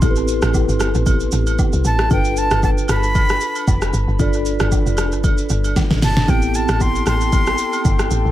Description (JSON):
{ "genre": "amapiano", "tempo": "115 BPM", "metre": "4/4", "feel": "swing 55% on 16ths", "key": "A minor", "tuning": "A4 = 439 Hz", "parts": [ { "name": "mellow tine electric piano", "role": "accompaniment", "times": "0.0-8.3 s", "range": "B3 to D5", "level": "-23 LUFS", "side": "left 1 dB", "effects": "medium stereo tremolo, dub echo" }, { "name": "deep log drum bass", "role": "bass", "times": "0.0-8.3 s", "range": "F1 to C2", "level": "-19 LUFS", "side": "equal", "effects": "none" }, { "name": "deep house drum kit", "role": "drums", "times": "0.0-8.2 s", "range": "hi-hat, kick drum, rim click, shaker, snare drum", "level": "-19 LUFS", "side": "equal", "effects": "none" }, { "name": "agogo bells and woodblock", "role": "percussion", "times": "0.0-8.0 s", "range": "none", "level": "-30 LUFS", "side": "right 4 dB", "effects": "none" }, { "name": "breathy jazz flute", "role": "melody", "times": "1.9-8.1 s", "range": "G5 to C6", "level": "-23 LUFS", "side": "equal", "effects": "dub echo" }, { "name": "breathy mellow flute section", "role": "sustained chords", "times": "6.3-8.3 s", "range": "G4 to A5", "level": "-27 LUFS", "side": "left 5 dB", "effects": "sidechain pumping" } ], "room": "light reverb", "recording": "echo-heavy mix", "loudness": "-15 LUFS", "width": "side -13 dB against mid", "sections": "0.0-8.3 A section", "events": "drum fill 5.8-6.3", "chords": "0.0 Am9; 2.1 G9; 6.3 Am9" }